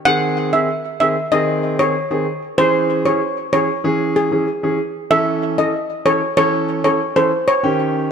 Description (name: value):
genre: dancehall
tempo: 95 BPM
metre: 4/4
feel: straight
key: unclear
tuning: A4 = 437 Hz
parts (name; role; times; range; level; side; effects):
- steel pan; melody; 0.1-7.6 s; G#4 to F#5; -17 LUFS; equal; digital delay
- warm concert grand piano; accompaniment; 0.1-8.1 s; D#3 to A4; -19 LUFS; right 1 dB; none
room: moderate lush hall reverb, RT60 2.0 s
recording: dark, warm production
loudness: -15 LUFS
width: side -7 dB against mid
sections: 0.0-5.1 A section; 5.1-8.1 B section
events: none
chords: 0.1 G#; 2.6 C#m; 5.1 A